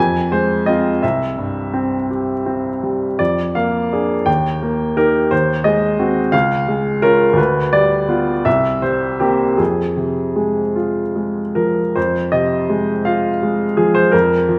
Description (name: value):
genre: classical, romantic character piece for solo piano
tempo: 49-60 BPM (dotted quarters)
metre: 6/8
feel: rubato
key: F minor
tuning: A4 = 440 Hz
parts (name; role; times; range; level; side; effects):
- clear baby grand piano; solo; 0.0-14.6 s; C2 to Ab5; -17 LUFS; equal; none
room: moderate scoring stage reverb, RT60 1.6 s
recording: none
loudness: -17 LUFS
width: mono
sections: 0.0-12.0 A section; 12.0-14.6 A section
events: none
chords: 0.0 Fm; 1.0 C; 3.2 Bb7/F; 4.3 Eb; 5.3 Ab7/Eb; 6.3 Db; 7.4 G7/D; 8.5 C5; 9.6 Fm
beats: | 1.03 2.10 | 3.20 4.27 | 5.32 6.33 | 7.38 8.46 | 9.60 10.77 | 11.96 13.07 | 14.13